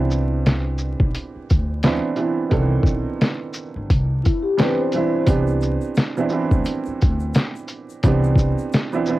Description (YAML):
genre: lo-fi hip hop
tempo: 87 BPM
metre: 4/4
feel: swing 60% on 16ths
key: unclear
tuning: A4 = 444 Hz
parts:
  - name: warm upright piano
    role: accompaniment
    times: 0.0-9.2 s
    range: Eb3 to A4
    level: -23 LUFS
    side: right 4 dB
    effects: cassette tape, low-pass filter
  - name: upright bass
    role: bass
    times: 0.0-8.5 s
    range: G1 to D2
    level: -22 LUFS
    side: equal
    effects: transformer saturation
  - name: lo-fi sampler-style drum kit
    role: drums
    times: 0.1-9.2 s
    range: hi-hat, kick drum, shaker, snare drum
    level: -18 LUFS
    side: equal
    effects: overdrive, cassette tape
  - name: vibraphone with soft mallets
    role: second line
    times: 4.2-5.3 s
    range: E4 to C5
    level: -25 LUFS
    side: left 6 dB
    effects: auto-pan, low-pass filter, tape echo
  - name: egg shaker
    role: percussion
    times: 5.3-9.1 s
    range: none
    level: -51 LUFS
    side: left 8 dB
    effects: none
room: moderate booth ambience, RT60 0.3 s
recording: home recording on cassette, vinyl crackle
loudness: -18 LUFS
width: side -17 dB against mid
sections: 0.0-5.3 A section; 5.3-9.2 B section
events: none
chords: 0.0 Cmaj9